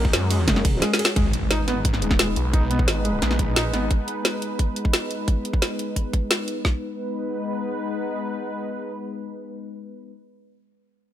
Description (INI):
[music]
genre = dark technical drum and bass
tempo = 175 BPM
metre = 4/4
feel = straight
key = G# minor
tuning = A4 = 440 Hz
[part]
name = sweeping resonant pad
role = sustained chords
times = 0.0-10.1 s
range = G#3 to B4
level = -29 LUFS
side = equal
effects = chorus, sidechain pumping
[part]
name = felt-muted upright piano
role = arpeggios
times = 0.0-3.8 s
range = G#3 to G#4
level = -28 LUFS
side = left 1 dB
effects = sidechain pumping, ping-pong delay
[part]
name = snarling distorted saw bass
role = bass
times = 0.0-3.9 s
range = D#1 to F#2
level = -24 LUFS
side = equal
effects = distortion
[part]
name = drum and bass drum kit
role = drums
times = 0.0-6.7 s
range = kick drum, snare drum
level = -22 LUFS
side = equal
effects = none
[part]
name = drum and bass drum kit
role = drums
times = 0.1-6.5 s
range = hi-hat, ride cymbal, snare drum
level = -23 LUFS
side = equal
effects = none
[part]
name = metallic wobble bass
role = bass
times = 0.5-0.8 s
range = F#1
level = -24 LUFS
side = equal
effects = chorus
[part]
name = impact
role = sound effects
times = 1.2-2.5 s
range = none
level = -30 LUFS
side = equal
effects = none
[sound]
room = light reverb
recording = none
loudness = -21 LUFS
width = side -11 dB against mid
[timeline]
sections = 0.0-1.2 A section; 1.2-6.6 B section; 6.6-9.4 C section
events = drop 0.0-1.2; drum fill 0.8-1.2; impact 1.2-2.5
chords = 0.0 F#add9; 1.2 G#m